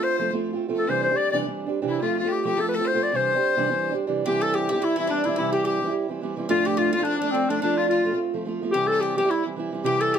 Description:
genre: celtic folk, Celtic reel.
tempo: 214 BPM.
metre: 4/4.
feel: swing 56% on 8ths.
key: C major.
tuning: A4 = 440 Hz.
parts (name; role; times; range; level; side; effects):
warm clarinet; melody; 0.0-10.2 s; C4 to D5; -23 LUFS; left 2 dB; none.
bright fiddle; second line; 0.0-10.2 s; C4 to D5; -32 LUFS; left 7 dB; none.
fingerpicked steel-string acoustic guitar; accompaniment; 0.0-10.2 s; D2 to F4; -26 LUFS; right 5 dB; none.
Irish bouzouki; second line; 4.3-10.2 s; C4 to A4; -30 LUFS; right 3 dB; none.
room: moderate studio reverb, RT60 0.7 s.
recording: none.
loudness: -21 LUFS.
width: side -8 dB against mid.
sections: 0.0-4.3 A section; 4.3-10.2 B section.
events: none.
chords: 0.0 F; 0.9 Cadd9; 2.0 F; 3.1 Cadd9; 4.3 C; 6.5 Dm7; 7.6 F; 8.7 C.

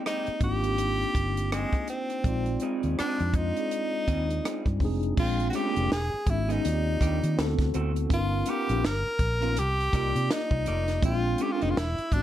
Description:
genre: R&B, neo-soul.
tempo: 82 BPM.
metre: 4/4.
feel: swing 58% on 16ths.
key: unclear.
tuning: A4 = 440 Hz.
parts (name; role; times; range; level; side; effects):
electric guitar through a small old amp; second line; 0.0-11.7 s; Ab3 to D5; -36 LUFS; right 4 dB; spring reverb, plate reverb.
mellow tine electric piano; accompaniment; 0.0-12.2 s; Ab3 to G5; -31 LUFS; equal; medium stereo tremolo, plate reverb.
edgy tenor saxophone; melody; 0.1-12.2 s; Ab3 to A#4; -30 LUFS; equal; plate reverb.
compact cocktail drum kit; drums; 0.1-12.2 s; crash cymbal, hi-hat, kick drum, rim click, snare drum; -29 LUFS; equal; none.
vintage muted fingered electric bass; bass; 0.3-12.2 s; E1 to Eb3; -29 LUFS; equal; none.
room: light reverb.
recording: dark, warm production.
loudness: -24 LUFS.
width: side -12 dB against mid.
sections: 0.0-5.2 A section; 5.2-12.2 B section.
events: none.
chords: 0.0 Abmaj7; 2.2 Bb9sus4 (rootless); 5.2 Bb7; 5.9 Emaj7; 6.6 Ebmaj7; 7.4 D7; 8.1 G7alt; 9.6 Cm9; 11.0 Bb7.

